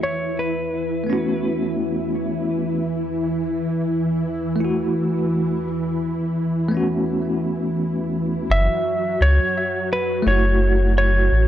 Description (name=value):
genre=trip hop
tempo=85 BPM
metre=4/4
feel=swing 60% on 16ths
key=F# minor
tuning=A4 = 440 Hz
part: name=clean lap steel guitar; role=melody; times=0.0-1.8, 8.5-11.5 s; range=B4 to E5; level=-23 LUFS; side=equal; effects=tape echo
part: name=bell-like tine electric piano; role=accompaniment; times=0.0-11.3 s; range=A3 to F#4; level=-24 LUFS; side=equal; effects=medium stereo tremolo, tape echo
part: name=string machine, cellos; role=sustained chords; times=0.0-11.5 s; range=E3 to F#4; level=-23 LUFS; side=equal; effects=ensemble chorus
part: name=soft dub sub bass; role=bass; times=8.5-11.5 s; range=F#1 to C#2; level=-17 LUFS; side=equal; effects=tube saturation
room=light reverb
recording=dry, gritty hardware recording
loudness=-19 LUFS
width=side -11 dB against mid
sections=0.0-8.5 A section; 8.5-11.5 B section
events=none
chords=0.0 A69; 2.8 F#m7; 5.7 A69; 8.5 F#m7